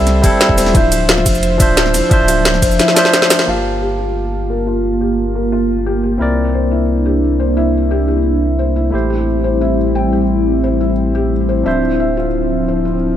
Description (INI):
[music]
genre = liquid drum and bass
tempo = 176 BPM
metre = 4/4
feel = straight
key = G dorian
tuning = A4 = 440 Hz
[part]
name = barky tine electric piano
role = accompaniment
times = 0.0-13.2 s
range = F3 to A5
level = -18 LUFS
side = equal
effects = overdrive, tape echo
[part]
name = airy breathy pad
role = sustained chords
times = 0.0-13.2 s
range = F3 to A5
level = -18 LUFS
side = equal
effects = chorus, sidechain pumping
[part]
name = felt-muted upright piano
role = arpeggios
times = 0.0-13.2 s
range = E4 to G5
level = -21 LUFS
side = left 4 dB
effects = low-pass filter, tape echo
[part]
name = warm sub bass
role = bass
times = 0.0-13.2 s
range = D1 to C2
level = -18 LUFS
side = equal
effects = none
[part]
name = garage drum kit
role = drums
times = 0.1-3.5 s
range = cabasa, hi-hat, ride cymbal, snare drum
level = -16 LUFS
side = equal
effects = overdrive
[part]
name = electronic kick drum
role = drums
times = 0.2-2.7 s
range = none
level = -14 LUFS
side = equal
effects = overdrive
[sound]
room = light reverb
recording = none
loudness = -12 LUFS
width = side -10 dB against mid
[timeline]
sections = 0.0-3.5 A section; 3.5-13.2 B section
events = drop 0.0-3.5; drum fill 2.8-3.5; band accent 3.4; filter sweep on felt piano 3.5-13.2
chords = 0.0 Am7; 0.7 Dm9; 3.5 Gm9; 6.2 C9; 8.9 Am7; 11.7 Dm9